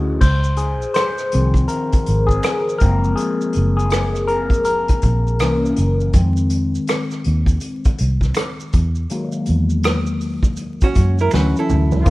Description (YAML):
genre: R&B, neo-soul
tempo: 81 BPM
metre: 4/4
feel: swing 62% on 16ths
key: unclear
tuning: A4 = 440 Hz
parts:
  - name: overdriven tine electric piano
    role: accompaniment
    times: 0.0-12.1 s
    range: Eb3 to D#5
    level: -20 LUFS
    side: left 2 dB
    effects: phaser
  - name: vintage muted fingered electric bass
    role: bass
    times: 0.0-12.1 s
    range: Gb1 to F#2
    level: -18 LUFS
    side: equal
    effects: none
  - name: unplugged drum kit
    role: drums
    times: 0.2-12.1 s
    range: crash cymbal, hi-hat, kick drum, rim click, snare drum, toms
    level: -19 LUFS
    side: equal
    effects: vintage 12-bit sampler grit
  - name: maracas and finger snaps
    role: percussion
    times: 0.2-12.1 s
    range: none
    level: -36 LUFS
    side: right 5 dB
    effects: none
  - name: archtop guitar, miked and amplified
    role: second line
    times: 10.8-12.1 s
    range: Db4 to Cb5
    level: -21 LUFS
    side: right 4 dB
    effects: none
  - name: muted studio string section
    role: sustained chords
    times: 12.1 s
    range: C3 to F4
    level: -20 LUFS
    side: right 1 dB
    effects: none
room: small room ambience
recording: rough home demo mix, vinyl crackle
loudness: -15 LUFS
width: side -19 dB against mid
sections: 0.2-12.1 A section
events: tine electric piano solo 0.2-12.1; drum fill 11.3-12.1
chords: 0.2 Dbmaj9; 2.8 Gbmaj9#11; 5.4 C7b9; 6.1 Fm7; 8.7 Emaj9#11; 11.3 Dmaj9